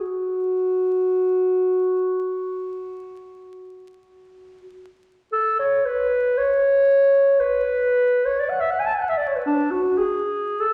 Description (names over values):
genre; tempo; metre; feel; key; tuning
classical, free, expressive piece for unaccompanied clarinet; 37-59 BPM; 4/4; rubato; F# minor; A4 = 440 Hz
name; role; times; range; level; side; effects
dark clarinet; solo; 0.0-10.7 s; D4 to A5; -21 LUFS; equal; none
room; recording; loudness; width
wet recital hall reverb, RT60 1.6 s; vinyl crackle; -21 LUFS; mono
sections
0.0-5.3 A section; 5.3-10.7 B section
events
none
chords
none